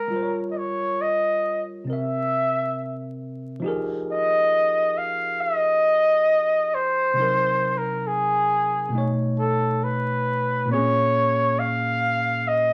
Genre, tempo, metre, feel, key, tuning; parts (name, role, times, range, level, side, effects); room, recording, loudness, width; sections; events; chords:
R&B; 68 BPM; 4/4; swing 58% on 16ths; F minor; A4 = 440 Hz
warm flugelhorn; melody; 0.0-12.7 s; Ab4 to F5; -23 LUFS; equal
tine electric piano; accompaniment; 0.0-12.7 s; Bb2 to E5; -30 LUFS; equal
moderate studio reverb, RT60 0.7 s; vinyl crackle; -23 LUFS; mono
0.0-3.6 A section; 3.6-12.7 B section
0.1 Gm7b5; 1.9 C7; 3.6 Fm11; 7.2 Cm7b5; 8.9 B9; 10.7 Bbm7